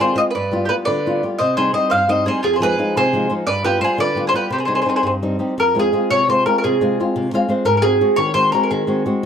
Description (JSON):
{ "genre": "italian folk, Italian serenade", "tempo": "115 BPM (dotted quarters)", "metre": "6/8", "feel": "rubato", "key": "C harmonic minor", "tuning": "A4 = 440 Hz", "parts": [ { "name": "mandolin", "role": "melody", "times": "0.0-9.1 s", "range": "Ab4 to F5", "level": "-17 LUFS", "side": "equal", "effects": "none" }, { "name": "mandolin", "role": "second line", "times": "0.0-5.1 s", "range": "F4 to C5", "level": "-24 LUFS", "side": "right 3 dB", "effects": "none" }, { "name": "flamenco guitar", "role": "accompaniment", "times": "0.0-9.3 s", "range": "F2 to F5", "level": "-20 LUFS", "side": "left 1 dB", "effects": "none" } ], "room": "small room reverb", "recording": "dry, close 1970s-style studio recording", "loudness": "-15 LUFS", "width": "side -8 dB against mid", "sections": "0.0-5.6 A section; 5.6-9.3 B section", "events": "nylon-string guitar fill 7.2-7.7", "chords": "0.3 G7; 1.4 Cm; 2.4 Fm7; 3.5 G7; 4.5 Cm; 5.6 Fm; 7.7 Ab7" }